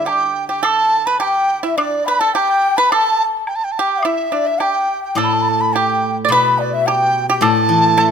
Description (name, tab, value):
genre	chinese traditional, Chinese chamber ensemble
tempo	106 BPM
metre	2/4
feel	rubato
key	G gong mode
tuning	A4 = 440 Hz
part	mellow large dizi	melody	0.0-8.1 s	D5 to B5	-18 LUFS	right 3 dB	none
part	breathy bright xiao	second line	0.0-8.0 s	D5 to B5	-19 LUFS	left 7 dB	none
part	pipa	second line	0.0-8.1 s	G3 to D5	-20 LUFS	right 6 dB	none
part	steel-string zither	accompaniment	0.0-0.1, 5.2-8.1 s	A2 to A3	-20 LUFS	left 2 dB	none
part	woodblock	percussion	0.1-8.1 s	none	-26 LUFS	left 1 dB	none
room	light reverb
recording	close, detailed microphones, faint mains hum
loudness	-14 LUFS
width	side -7 dB against mid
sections	0.7-8.1 A section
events	none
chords	none